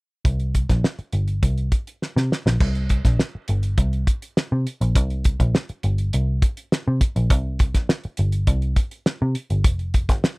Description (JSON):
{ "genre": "funk", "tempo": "102 BPM", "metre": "4/4", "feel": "straight", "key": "unclear", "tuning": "A4 = 440 Hz", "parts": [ { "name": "cloth-damped thuddy drum kit", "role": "drums", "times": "0.2-10.4 s", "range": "crash cymbal, hi-hat, kick drum, snare drum", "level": "-19 LUFS", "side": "equal", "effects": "none" }, { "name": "vintage muted picked electric bass", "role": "bass", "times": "0.3-10.2 s", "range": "F1 to C3", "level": "-21 LUFS", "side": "equal", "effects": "none" } ], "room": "little or no reverb", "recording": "dry, close 1970s-style studio recording", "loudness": "-19 LUFS", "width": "side -28 dB against mid", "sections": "0.2-2.6 A section; 2.6-10.4 B section", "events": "drum fill 2.0-2.6", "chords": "none" }